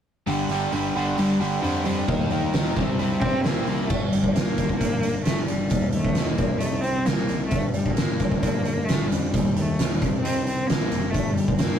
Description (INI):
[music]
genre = quiet-loud alternative rock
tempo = 132 BPM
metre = 4/4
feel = straight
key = G minor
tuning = A4 = 440 Hz
[part]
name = twelve-string electric guitar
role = arpeggios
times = 0.3-11.8 s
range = G2 to Eb4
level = -29 LUFS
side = left 1 dB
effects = none
[part]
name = overdriven electric guitar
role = riff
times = 0.3-3.9 s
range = G2 to Eb4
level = -25 LUFS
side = right 1 dB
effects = none
[part]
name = picked electric bass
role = bass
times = 0.3-11.8 s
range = F#1 to F2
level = -30 LUFS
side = equal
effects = none
[part]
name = oversized low-tuned drum kit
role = drums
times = 0.3-11.7 s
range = crash cymbal, hi-hat, kick drum, snare drum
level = -24 LUFS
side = equal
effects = none
[part]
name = clear cello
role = melody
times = 3.2-11.8 s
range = G3 to C4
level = -27 LUFS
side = equal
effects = none
[sound]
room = moderate booth ambience, RT60 0.2 s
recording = rough rehearsal-room recording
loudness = -21 LUFS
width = side -9 dB against mid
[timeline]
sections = 0.3-3.9 A section; 3.9-11.8 B section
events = none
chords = 0.3 G5; 2.1 Eb; 2.8 C5; 3.9 Gm; 5.7 Eb; 6.4 Cm; 7.5 Gm; 9.3 Eb; 10.0 Cm; 11.1 Gm